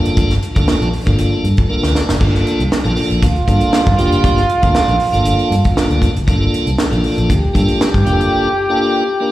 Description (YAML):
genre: funk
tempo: 118 BPM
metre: 4/4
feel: straight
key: G minor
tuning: A4 = 440 Hz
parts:
  - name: tonewheel organ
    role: stabs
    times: 0.0-9.3 s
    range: Bb3 to D5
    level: -18 LUFS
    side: equal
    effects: overdrive, slow rotary speaker, slapback echo
  - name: vintage muted fingered electric bass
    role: bass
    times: 0.0-8.3 s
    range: F1 to G2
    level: -16 LUFS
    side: equal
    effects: none
  - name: tight funk drum kit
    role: drums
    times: 0.1-8.3 s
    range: crash cymbal, hi-hat, kick drum, snare drum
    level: -17 LUFS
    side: equal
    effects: none
  - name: brilliant trombone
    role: second line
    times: 3.2-9.3 s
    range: F4 to G4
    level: -17 LUFS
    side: right 1 dB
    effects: slapback echo
room: light reverb, studio reverb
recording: live gig heard through the venue's PA, recital hall reverb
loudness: -12 LUFS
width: side -15 dB against mid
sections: 0.0-9.3 A section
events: tonewheel organ fill 1.2-2.2; drum fill 1.7-2.2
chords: 0.0 Gm9